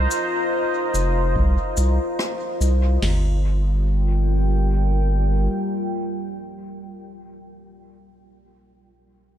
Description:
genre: ambient dub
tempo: 72 BPM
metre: 4/4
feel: swing 59% on 16ths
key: G minor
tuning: A4 = 439 Hz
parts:
  - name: deep dark ambient pad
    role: sustained chords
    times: 0.0-7.1 s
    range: G3 to Bb5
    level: -25 LUFS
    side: equal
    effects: chorus, built-in reverb, vintage 12-bit sampler grit
  - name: round analog bass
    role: bass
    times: 0.0-5.5 s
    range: F1 to C2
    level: -18 LUFS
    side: equal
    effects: none
  - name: shaker and rim click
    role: drums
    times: 0.1-2.8 s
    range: none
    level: -30 LUFS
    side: left 2 dB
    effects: dub echo
  - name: booming analog drum machine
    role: drums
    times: 1.4-3.3 s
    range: crash cymbal, kick drum, snare drum, toms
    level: -26 LUFS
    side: equal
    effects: none
room: light reverb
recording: faint mains hum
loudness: -19 LUFS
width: side -11 dB against mid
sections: 0.0-3.0 A section; 3.0-6.4 B section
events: none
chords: 0.0 F7sus4; 3.0 Gm7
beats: 0.52 1.36 2.19 | 3.02 3.86 4.69 5.52

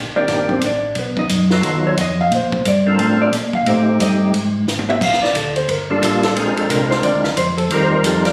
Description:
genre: soul jazz organ trio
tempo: 178 BPM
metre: 4/4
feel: swing 62% on 8ths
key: unclear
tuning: A4 = 440 Hz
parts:
  - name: mellow tonewheel organ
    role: bass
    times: 0.0-8.3 s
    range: G1 to Bb2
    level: -22 LUFS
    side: equal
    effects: chorus vibrato, slow rotary speaker
  - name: percussive tonewheel organ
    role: melody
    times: 0.2-8.3 s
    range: Eb3 to Bb4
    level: -21 LUFS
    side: equal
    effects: slow rotary speaker, overdrive, chorus vibrato
  - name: hollow-body jazz guitar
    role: accompaniment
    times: 0.2-8.3 s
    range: B3 to E#5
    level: -21 LUFS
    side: equal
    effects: none
  - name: compact cocktail drum kit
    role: drums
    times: 0.3-8.3 s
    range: crash cymbal, hi-hat, kick drum, ride cymbal, snare drum, toms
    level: -25 LUFS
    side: equal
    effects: none
room: light reverb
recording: recorded on a phone in the room, studio reverb, compression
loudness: -17 LUFS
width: mono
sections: 0.0-8.3 A section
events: hollow-body jazz guitar solo 0.0-8.3; drum fill 4.7-5.0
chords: 0.0 Cm9; 1.0 B7#11; 2.3 Bbmaj7; 3.7 Am7b5; 4.3 E/G#; 5.0 Gm9; 6.4 Bb7; 7.7 Eb69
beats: 0.28 0.62 | 0.96 1.30 1.63 1.97 | 2.31 2.65 2.98 3.32 | 3.66 4.00 4.33 4.67 | 5.01 5.34 5.68 6.02 | 6.36 6.69 7.03 7.37 | 7.71 8.04

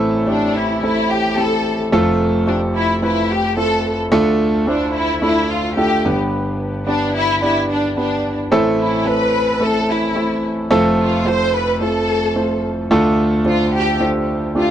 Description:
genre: pop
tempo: 109 BPM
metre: 4/4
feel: straight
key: unclear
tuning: A4 = 440 Hz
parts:
  - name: warm concert grand piano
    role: accompaniment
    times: 0.0-14.7 s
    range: F1 to D5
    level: -16 LUFS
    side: right 1 dB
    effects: none
  - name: rich studio violin section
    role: melody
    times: 0.3-14.7 s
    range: D4 to C5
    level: -20 LUFS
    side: left 1 dB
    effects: none
room: light reverb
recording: dry, close 1970s-style studio recording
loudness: -15 LUFS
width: side -10 dB against mid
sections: 0.0-14.7 A section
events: none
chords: 0.0 Am; 1.9 F; 4.1 Dm; 6.0 G; 8.5 Am; 10.7 F; 12.9 Dm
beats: 0.27 0.82 1.37 | 1.92 2.47 3.02 3.57 | 4.12 4.67 5.22 5.77 | 6.32 6.87 7.41 7.96 | 8.51 9.06 9.61 10.16 | 10.71 11.26 11.81 12.36 | 12.91 13.46 14.01 14.56

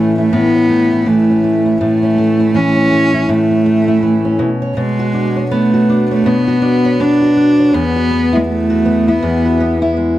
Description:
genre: pop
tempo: 81 BPM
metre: 4/4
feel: swing 60% on 16ths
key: A major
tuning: A4 = 440 Hz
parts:
  - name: warm cello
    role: melody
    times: 0.0-9.8 s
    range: G#3 to D4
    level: -14 LUFS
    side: right 1 dB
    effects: plate reverb
  - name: fingerpicked steel-string acoustic guitar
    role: accompaniment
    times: 0.0-10.2 s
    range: E2 to C#5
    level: -14 LUFS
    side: equal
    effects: none
room: moderate small room reverb, RT60 0.5 s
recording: dark, warm production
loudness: -11 LUFS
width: side -14 dB against mid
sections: 0.0-10.2 A section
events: none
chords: 0.0 A; 4.4 Bmadd9; 7.7 Esus2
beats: 0.32 1.06 | 1.80 2.54 3.28 4.03 | 4.77 5.51 6.25 7.00 | 7.74 8.48 9.22 9.96

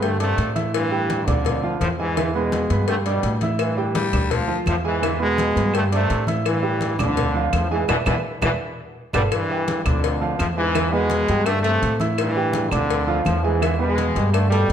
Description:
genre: latin, salsa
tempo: 168 BPM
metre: 4/4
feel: straight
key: unclear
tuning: A4 = 440 Hz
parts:
  - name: brilliant trombone section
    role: melody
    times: 0.0-14.7 s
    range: F2 to A3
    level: -23 LUFS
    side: equal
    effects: none
  - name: warm baby grand piano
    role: accompaniment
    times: 0.0-14.7 s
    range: E3 to G6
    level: -26 LUFS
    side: right 5 dB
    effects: none
  - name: upright bass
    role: bass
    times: 0.0-14.7 s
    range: G1 to A2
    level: -24 LUFS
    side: equal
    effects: none
  - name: congas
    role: percussion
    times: 0.0-14.7 s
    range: none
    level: -29 LUFS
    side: left 1 dB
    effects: none
  - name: cowbell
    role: percussion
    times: 0.0-14.7 s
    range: none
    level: -29 LUFS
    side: left 8 dB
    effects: none
  - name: claves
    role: percussion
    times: 3.6-14.5 s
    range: none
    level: -32 LUFS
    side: right 5 dB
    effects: none
  - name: raspy baritone saxophone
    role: second line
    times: 4.0-4.6 s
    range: F3 to G3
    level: -26 LUFS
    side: left 5 dB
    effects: none
room: wet large studio reverb, RT60 1.4 s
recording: none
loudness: -18 LUFS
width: side -9 dB against mid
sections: 0.0-9.3 A section; 9.3-14.7 A section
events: band accent 7.9-9.3; drum fill 8.8-9.3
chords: 0.0 Gsus2; 0.7 A5; 1.4 Dm; 2.2 E; 2.9 Gadd9; 3.6 A5; 4.3 Dm; 5.0 E; 5.7 Gsus2; 6.5 A5; 7.2 Dm; 7.9 E5; 8.6 Gadd9; 9.3 Dsus24; 10.0 Dm; 10.8 E; 11.5 Gsus2; 12.2 A5; 12.9 Dm; 13.6 E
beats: 0.02 0.38 | 0.73 1.09 1.45 1.81 | 2.16 2.52 2.88 3.24 | 3.60 3.95 4.31 4.67 | 5.03 5.38 5.74 6.10 | 6.46 6.81 7.17 7.53 | 7.89 8.25 8.60 8.96 | 9.32 9.68 10.04 10.39 | 10.75 11.11 11.47 11.82 | 12.18 12.54 12.90 13.26 | 13.62 13.97 14.33 14.69

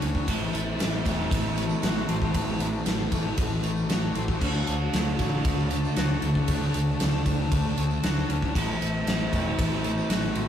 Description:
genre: rock, shoegaze and dream pop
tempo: 116 BPM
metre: 4/4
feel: straight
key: unclear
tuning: A4 = 440 Hz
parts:
  - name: phased analog pad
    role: sustained chords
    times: 0.0-10.5 s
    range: F#4 to A5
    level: -37 LUFS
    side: left 3 dB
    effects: phaser, chorus
  - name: twangy electric guitar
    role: arpeggios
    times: 0.0-10.5 s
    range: E3 to F#4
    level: -38 LUFS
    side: left 1 dB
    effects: none
  - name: biting overdriven guitar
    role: riff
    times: 0.0-10.5 s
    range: A2 to F#4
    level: -30 LUFS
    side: right 2 dB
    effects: none
  - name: thick fuzz guitar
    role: riff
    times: 0.0-10.5 s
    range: A2 to D4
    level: -31 LUFS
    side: left 4 dB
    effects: distortion
  - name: growling fingered electric bass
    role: bass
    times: 0.0-10.5 s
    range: E1 to D2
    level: -30 LUFS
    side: equal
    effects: overdrive
  - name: gated 80s drum kit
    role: drums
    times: 0.0-10.5 s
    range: crash cymbal, kick drum, ride cymbal, snare drum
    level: -29 LUFS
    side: equal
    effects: none
  - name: tambourine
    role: percussion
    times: 0.0-10.4 s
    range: none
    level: -47 LUFS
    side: right 5 dB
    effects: none
room: moderate studio reverb, RT60 0.6 s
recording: rough rehearsal-room recording, warm saturation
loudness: -23 LUFS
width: side -9 dB against mid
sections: 0.0-10.5 A section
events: none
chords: 0.3 Am6; 4.4 Dmaj7; 8.5 Am6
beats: | 0.28 0.80 1.31 1.83 | 2.35 2.87 3.38 3.90 | 4.42 4.93 5.45 5.97 | 6.48 7.00 7.51 8.03 | 8.55 9.06 9.58 10.09

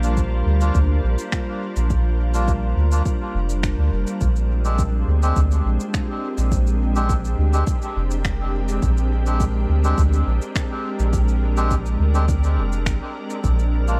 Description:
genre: ambient dub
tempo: 104 BPM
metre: 4/4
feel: straight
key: Bb mixolydian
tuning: A4 = 440 Hz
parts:
  - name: soft additive organ-like pad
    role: sustained chords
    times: 0.0-14.0 s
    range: G3 to Bb4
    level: -30 LUFS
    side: equal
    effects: ensemble chorus, built-in reverb
  - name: melodica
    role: stabs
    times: 0.0-14.0 s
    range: Ab3 to G4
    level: -32 LUFS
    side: equal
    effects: dub echo
  - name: soft dub sub bass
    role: bass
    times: 0.0-14.0 s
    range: F1 to D2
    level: -21 LUFS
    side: equal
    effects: none
  - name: electronic shaker and finger snaps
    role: drums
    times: 0.0-14.0 s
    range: none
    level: -35 LUFS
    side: equal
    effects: dub echo
  - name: drifting glass-harmonics texture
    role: texture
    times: 0.0-4.2 s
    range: C5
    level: -41 LUFS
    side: equal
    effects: chorus, built-in reverb
  - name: electronic kick drum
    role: drums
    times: 0.2-13.6 s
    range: none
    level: -26 LUFS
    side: equal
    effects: none
room: light reverb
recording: none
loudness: -21 LUFS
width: mono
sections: 0.0-4.2 A section; 4.2-14.0 A section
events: none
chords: 0.0 Gm7; 4.2 Bb13; 13.4 Gm7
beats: 0.17 0.75 1.32 | 1.90 2.48 3.06 3.63 | 4.21 4.79 5.36 5.94 | 6.52 7.09 7.67 8.25 | 8.82 9.40 9.98 10.55 | 11.13 11.71 12.29 12.86 | 13.44

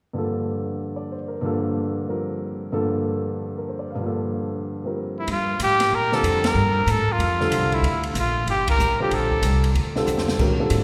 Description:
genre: modal jazz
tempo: 188 BPM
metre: 4/4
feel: swing 63% on 8ths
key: G minor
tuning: A4 = 439 Hz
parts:
  - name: warm grand piano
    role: accompaniment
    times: 0.1-10.8 s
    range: G2 to F5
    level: -28 LUFS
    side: equal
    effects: none
  - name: clear trumpet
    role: melody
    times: 5.2-9.8 s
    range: E4 to Bb4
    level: -24 LUFS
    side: equal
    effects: none
  - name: upright bass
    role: bass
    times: 5.3-10.8 s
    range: G1 to Bb2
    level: -26 LUFS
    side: equal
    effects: none
  - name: open jazz drum kit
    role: drums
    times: 5.3-10.8 s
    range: crash cymbal, hi-hat, kick drum, ride cymbal, snare drum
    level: -30 LUFS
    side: equal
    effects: none
room: wet church reverb, RT60 3.7 s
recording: recorded in a church or concert hall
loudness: -23 LUFS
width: mono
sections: 0.1-5.3 A section; 5.3-10.8 B section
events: band accent 6.4, 8.6; drum fill 10.1-10.4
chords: 0.1 Gm9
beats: | 0.14 0.47 0.79 1.11 | 1.43 1.75 2.07 2.40 | 2.72 3.04 3.36 3.68 | 4.00 4.32 4.64 4.96 | 5.28 5.60 5.92 6.24 | 6.56 6.88 7.20 7.52 | 7.84 8.15 8.47 8.79 | 9.11 9.43 9.75 10.07 | 10.39 10.71

